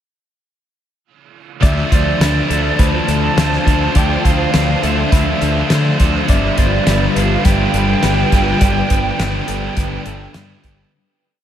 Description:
rock, shoegaze and dream pop; 103 BPM; 4/4; straight; D dorian; A4 = 439 Hz
mellow concert flute; melody; 1.6-10.4 s; D5 to A5; -22 LUFS; right 3 dB; tape echo
phased string machine; sustained chords; 1.6-10.9 s; F3 to C5; -23 LUFS; equal; ensemble chorus, phaser
direct-recorded clean electric guitar; arpeggios; 1.6-10.9 s; A4 to D5; -28 LUFS; left 5 dB; wide subtle chorus, tape echo
biting overdriven guitar; riff; 1.6-10.9 s; G2 to D4; -22 LUFS; right 7 dB; reverse reverb
thick fuzz guitar; riff; 1.6-10.9 s; G2 to D4; -22 LUFS; left 7 dB; distortion, lush chorus
fuzz fingered electric bass; bass; 1.6-10.8 s; G1 to D3; -19 LUFS; equal; overdrive
loose indie drum kit; drums; 1.6-10.8 s; hi-hat, kick drum, snare drum; -17 LUFS; equal
moderate huge ambient reverb, RT60 8.5 s; dreamy mix soaked in reverb; -12 LUFS; side -10 dB against mid
1.6-10.9 verse
fade-out 8.6-10.9
1.6 Dm9; 6.3 G7

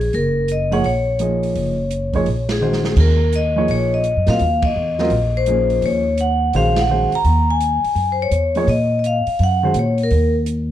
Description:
modal jazz; 168 BPM; 4/4; swing 65% on 8ths; Eb dorian; A4 = 440 Hz
vibraphone with medium hard mallets; melody; 0.0-10.3 s; Ab4 to Bb5; -19 LUFS; left 2 dB; plate reverb
upright bass; bass; 0.0-10.7 s; Gb1 to Bb2; -19 LUFS; equal
open jazz drum kit; drums; 0.0-10.6 s; crash cymbal, hi-hat, kick drum, ride cymbal, snare drum; -28 LUFS; right 3 dB
warm upright piano; accompaniment; 0.7-9.7 s; Eb3 to Eb5; -22 LUFS; right 2 dB
light reverb; dark, warm production; -15 LUFS; side -12 dB against mid
0.0-10.7 A section
band accent 2.4, 4.6, 6.7; drum fill 2.6-3.0
0.0 Ebm11

